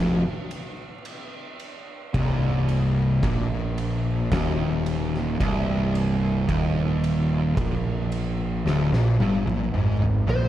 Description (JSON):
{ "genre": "stoner and doom metal", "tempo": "55 BPM", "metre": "4/4", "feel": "straight", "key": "C minor", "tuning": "A4 = 439 Hz", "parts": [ { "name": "fuzz guitar", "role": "riff", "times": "0.0-10.5 s", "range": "C2 to Bb2", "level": "-23 LUFS", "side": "equal", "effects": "distortion" }, { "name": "fuzz picked electric bass", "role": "bass", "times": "0.0-10.5 s", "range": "C1 to Bb1", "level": "-27 LUFS", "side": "equal", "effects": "overdrive" }, { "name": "oversized low-tuned drum kit", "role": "drums", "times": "0.5-10.5 s", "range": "kick drum, ride cymbal, snare drum, toms", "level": "-29 LUFS", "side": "equal", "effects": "none" }, { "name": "fuzz lead guitar", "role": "melody", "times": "10.3-10.5 s", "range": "C5", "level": "-26 LUFS", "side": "left 1 dB", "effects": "distortion" } ], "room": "light reverb", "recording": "dark, warm production, vinyl crackle", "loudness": "-21 LUFS", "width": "side -12 dB against mid", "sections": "0.0-10.5 A section", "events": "drum fill 8.7-10.5", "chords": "0.0 Cm" }